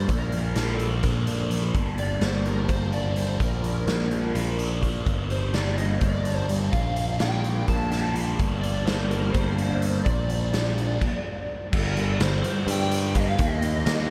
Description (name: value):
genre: psychedelic rock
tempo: 253 BPM (eighths)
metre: 7/8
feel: straight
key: G minor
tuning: A4 = 439 Hz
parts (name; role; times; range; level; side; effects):
- overdriven slide guitar; melody; 0.0-14.1 s; Bb4 to A5; -34 LUFS; equal; ensemble chorus, tape echo
- thick fuzz guitar; riff; 0.0-14.1 s; G2 to Eb4; -31 LUFS; equal; distortion, phaser
- picked electric bass; bass; 0.0-14.1 s; G1 to G2; -29 LUFS; equal; none
- raw garage drum kit; drums; 0.1-14.0 s; crash cymbal, hi-hat, kick drum, snare drum; -30 LUFS; equal; none
room: moderate huge ambient reverb, RT60 7.9 s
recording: dreamy mix soaked in reverb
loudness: -25 LUFS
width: mono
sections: 0.0-11.7 A section; 11.7-14.1 B section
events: stop 11.0-11.7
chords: 0.1 Bb; 1.7 Gm; 3.4 Bb; 5.1 Gm; 6.7 Bb; 8.4 Gm; 10.1 Bb; 11.7 Gm; 13.4 Eb5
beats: | 0.09 0.33 0.57 0.80 1.04 1.28 1.51 | 1.75 1.99 2.22 2.46 2.70 2.93 3.17 | 3.41 3.64 3.88 4.12 4.35 4.59 4.83 | 5.07 5.30 5.54 5.78 6.01 6.25 6.49 | 6.73 6.96 7.20 7.44 7.68 7.92 8.15 | 8.39 8.63 8.87 9.11 9.34 9.58 9.82 | 10.06 10.30 10.54 10.77 11.01 11.25 11.49 | 11.72 11.96 12.20 12.44 12.68 12.91 13.15 | 13.39 13.63 13.86 14.10